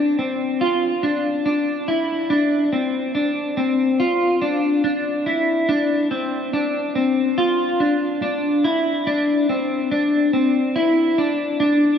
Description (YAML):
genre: dream pop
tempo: 71 BPM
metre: 4/4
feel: straight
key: unclear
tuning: A4 = 440 Hz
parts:
  - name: clean electric guitar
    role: solo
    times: 0.0-12.0 s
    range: C4 to F4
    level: -18 LUFS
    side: left 1 dB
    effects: analog chorus, diffuse ambient delay
room: wet lush hall reverb, RT60 3.0 s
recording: dreamy mix soaked in reverb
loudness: -18 LUFS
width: side -8 dB against mid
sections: 0.0-12.0 A section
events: none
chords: none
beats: 0.62 1.46 | 2.31 3.15 4.00 4.84 | 5.69 6.53 7.38 8.22 | 9.07 9.91 10.76 11.60